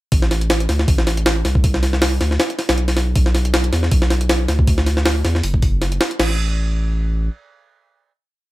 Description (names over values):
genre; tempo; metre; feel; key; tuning
drum and bass, jungle; 158 BPM; 4/4; swing 55% on 16ths; A dorian; A4 = 438 Hz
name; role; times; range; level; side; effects
saturated sub bass; bass; 0.1-7.3 s; F#1 to E2; -18 LUFS; equal; none
jungle sampler-style drum kit; drums; 0.1-6.3 s; crash cymbal, hi-hat, kick drum, snare drum; -17 LUFS; equal; none
room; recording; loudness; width
little or no reverb; none; -15 LUFS; side -18 dB against mid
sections
0.1-6.2 drop; 6.2-8.5 final note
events
drop 0.1-6.2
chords
none